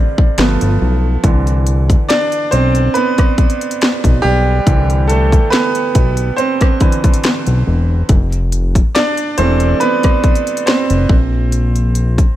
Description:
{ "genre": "contemporary R&B", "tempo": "70 BPM", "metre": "4/4", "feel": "swing 54% on 16ths", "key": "C major", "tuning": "A4 = 445 Hz", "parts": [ { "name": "bright grand piano", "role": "accompaniment", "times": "0.0-12.4 s", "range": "D3 to D5", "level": "-16 LUFS", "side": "right 2 dB", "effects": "none" }, { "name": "trap drum kit", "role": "drums", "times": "0.2-12.4 s", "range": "hi-hat, kick drum, rim click, snare drum", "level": "-14 LUFS", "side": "equal", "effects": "none" }, { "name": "fat analog bass", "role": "bass", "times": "0.4-12.2 s", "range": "E1 to C2", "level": "-14 LUFS", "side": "equal", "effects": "none" } ], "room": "digital ambience", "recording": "none", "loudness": "-11 LUFS", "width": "side -13 dB against mid", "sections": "0.0-12.4 A section", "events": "grand piano solo 0.0-12.4", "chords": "0.4 G9; 1.2 Cmaj7; 8.1 Fmaj9; 11.1 Bbsus2" }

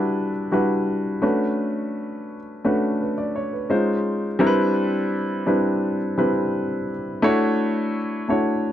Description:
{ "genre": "soul", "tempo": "85 BPM", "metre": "4/4", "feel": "straight", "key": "unclear", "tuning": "A4 = 440 Hz", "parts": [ { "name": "warm concert grand piano", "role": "solo", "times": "0.0-8.7 s", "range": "G3 to D5", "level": "-20 LUFS", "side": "equal", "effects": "none" } ], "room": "light reverb", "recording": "dry, close 1970s-style studio recording", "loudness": "-20 LUFS", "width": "side -11 dB against mid", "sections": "0.0-8.7 A section", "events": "none", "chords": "0.0 Em9; 1.2 Bm9; 3.7 C#maj9; 4.4 Cmaj9; 7.2 Dmaj9" }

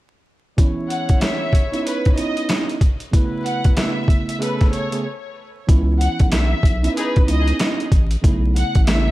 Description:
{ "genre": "hip hop, boom-bap hip-hop", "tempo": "94 BPM", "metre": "4/4", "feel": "swing 61% on 16ths", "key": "C# minor", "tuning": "A4 = 440 Hz", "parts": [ { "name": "mellow tine electric piano", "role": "accompaniment", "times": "0.6-9.1 s", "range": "C#3 to G#4", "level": "-24 LUFS", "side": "right 3 dB", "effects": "cassette tape, high-pass filter, low-pass filter" }, { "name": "warm horn section", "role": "stabs", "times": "0.6-7.2 s", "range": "E3 to C#5", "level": "-31 LUFS", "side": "left 3 dB", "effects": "high-pass filter, low-pass filter, ping-pong delay" }, { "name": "boom bap sampler-style drum kit", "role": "drums", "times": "0.6-9.1 s", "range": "hi-hat, kick drum, snare drum", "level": "-17 LUFS", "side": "equal", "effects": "none" }, { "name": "clear studio violin section", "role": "melody", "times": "0.9-9.1 s", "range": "B4 to F#5", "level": "-26 LUFS", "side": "left 1 dB", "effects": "high-pass filter, low-pass filter, ping-pong delay" }, { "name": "saturated sub bass", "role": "bass", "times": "5.7-9.1 s", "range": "A1 to C#2", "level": "-18 LUFS", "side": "equal", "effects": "none" } ], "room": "little or no reverb", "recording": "vinyl crackle", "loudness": "-16 LUFS", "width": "side -17 dB against mid", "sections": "0.6-5.7 A section; 5.7-9.1 B section", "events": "break 5.0-5.7", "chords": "0.6 C#m9; 3.1 B9sus4; 4.4 Amaj9/C#; 5.7 C#m9; 8.2 B9sus4" }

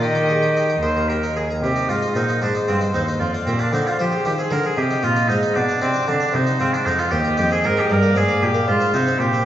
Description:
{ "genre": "classical, baroque-style sonata movement with continuo", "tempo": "76 BPM (dotted quarters)", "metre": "6/8", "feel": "straight", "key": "C minor", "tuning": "A4 = 439 Hz", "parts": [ { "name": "dark violin", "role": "melody", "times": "0.0-9.4 s", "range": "C5 to Eb5", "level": "-26 LUFS", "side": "left 2 dB", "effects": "none" }, { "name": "clear oboe", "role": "second line", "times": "0.0-9.4 s", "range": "C4 to C5", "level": "-21 LUFS", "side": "right 2 dB", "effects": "none" }, { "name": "harpsichord", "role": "accompaniment", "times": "0.0-9.4 s", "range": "Eb2 to Eb5", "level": "-24 LUFS", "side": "left 1 dB", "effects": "none" }, { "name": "rich cello", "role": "bass", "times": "0.0-9.4 s", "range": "Eb2 to F3", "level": "-22 LUFS", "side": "equal", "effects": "none" } ], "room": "wet recital hall reverb, RT60 1.6 s", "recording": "heard from further back in the room, nothing above 7.7 kHz", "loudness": "-17 LUFS", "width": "side -11 dB against mid", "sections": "0.0-1.6 A section; 1.6-9.4 A section", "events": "none", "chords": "0.0 Eb; 1.6 Cm; 2.4 Ab; 3.2 Fm; 4.8 Cm; 5.6 Bm; 6.3 Cm; 7.9 Bb13/G; 8.7 Abmaj13" }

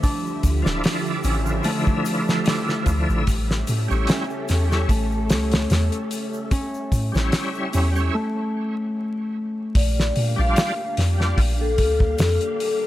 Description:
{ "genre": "trip hop", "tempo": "74 BPM", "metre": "4/4", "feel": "swing 55% on 16ths", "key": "unclear", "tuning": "A4 = 435 Hz", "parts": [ { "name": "string machine, cellos", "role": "sustained chords", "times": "0.0-12.9 s", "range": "D3 to F5", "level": "-30 LUFS", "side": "right 1 dB", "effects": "phaser, ensemble chorus" }, { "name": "Celtic harp", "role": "arpeggios", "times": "0.0-11.5 s", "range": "A3 to D5", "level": "-28 LUFS", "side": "left 1 dB", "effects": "vintage 12-bit sampler grit, tape echo" }, { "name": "damped 70s drum kit", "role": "drums", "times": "0.0-12.8 s", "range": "hi-hat, kick drum, snare drum", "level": "-23 LUFS", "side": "equal", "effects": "studio reverb" }, { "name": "tube shaker", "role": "percussion", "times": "0.0-12.4 s", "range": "none", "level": "-41 LUFS", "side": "left 5 dB", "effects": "none" }, { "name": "soft 808-style bass", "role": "bass", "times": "0.4-12.4 s", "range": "D1 to Bb2", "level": "-22 LUFS", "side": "equal", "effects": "none" }, { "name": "bright tonewheel organ", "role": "accompaniment", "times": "0.6-11.4 s", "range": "D3 to F4", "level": "-27 LUFS", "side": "equal", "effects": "overdrive, chorus vibrato, slow rotary speaker, tremolo, tape echo" }, { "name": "vibraphone with soft mallets", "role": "melody", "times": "9.8-12.9 s", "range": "A4 to F5", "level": "-24 LUFS", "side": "left 3 dB", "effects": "tape echo" } ], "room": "light reverb, studio reverb", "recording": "vinyl crackle", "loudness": "-19 LUFS", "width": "side -14 dB against mid", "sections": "0.0-9.8 A section; 9.8-12.9 B section", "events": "break 8.1-9.8", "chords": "0.0 Dmadd9; 3.3 A7; 9.8 Bb6" }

